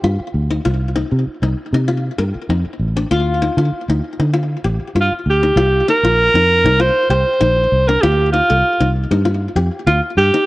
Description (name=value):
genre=afrobeat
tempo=98 BPM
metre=4/4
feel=swing 54% on 16ths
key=C dorian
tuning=A4 = 440 Hz
part: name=qanun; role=arpeggios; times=0.0-10.5 s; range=D4 to Bb4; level=-21 LUFS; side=left 3 dB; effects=tape echo
part: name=fingered electric bass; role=bass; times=0.0-10.3 s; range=A1 to D3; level=-17 LUFS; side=equal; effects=none
part: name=breathy alto saxophone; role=melody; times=5.0-10.5 s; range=F4 to C5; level=-14 LUFS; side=right 1 dB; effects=cassette tape
room=light reverb, studio reverb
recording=home recording on cassette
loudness=-13 LUFS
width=side -18 dB against mid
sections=0.0-5.6 A section; 5.6-10.5 B section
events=none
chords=0.0 Dm; 0.6 Cm; 3.1 Dm; 5.6 Cm7; 8.0 Dm7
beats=0.03 | 0.65 1.26 1.88 2.50 | 3.11 3.73 4.34 4.96 | 5.57 6.18 6.80 7.41 | 8.03 8.64 9.25 9.87